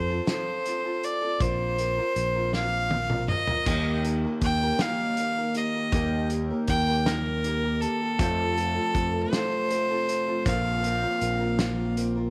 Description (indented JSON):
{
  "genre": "folk rock and heartland rock",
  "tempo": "53 BPM (dotted quarters)",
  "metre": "6/8",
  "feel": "straight",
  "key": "unclear",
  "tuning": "A4 = 441 Hz",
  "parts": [
    { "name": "bright fiddle", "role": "melody", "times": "0.0-11.9 s", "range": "A4 to G5", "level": "-30 LUFS", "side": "equal", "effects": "none" },
    { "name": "picked steel-string acoustic guitar", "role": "accompaniment", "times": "0.0-12.3 s", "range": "Eb3 to Bb4", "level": "-37 LUFS", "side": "equal", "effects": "none" },
    { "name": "fingered electric bass", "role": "bass", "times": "0.0-12.3 s", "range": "Bb1 to F2", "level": "-32 LUFS", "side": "equal", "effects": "none" },
    { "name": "loose indie drum kit", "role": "drums", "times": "0.3-12.2 s", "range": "crash cymbal, hi-hat, kick drum, snare drum, toms", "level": "-32 LUFS", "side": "equal", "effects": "none" },
    { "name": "reed electric piano", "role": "accompaniment", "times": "3.7-12.2 s", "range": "Bb3 to C5", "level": "-42 LUFS", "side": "equal", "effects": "none" },
    { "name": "electric guitar through a small old amp", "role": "riff", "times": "3.7-12.3 s", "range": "F2 to G4", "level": "-32 LUFS", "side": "equal", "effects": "phaser" }
  ],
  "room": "light reverb",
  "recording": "none",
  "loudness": "-26 LUFS",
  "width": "mono",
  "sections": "0.0-12.3 A section",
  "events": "drum fill 2.5-3.7",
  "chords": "0.0 F; 1.4 Bbsus2; 3.7 Eb; 8.2 F; 10.5 Bbsus2"
}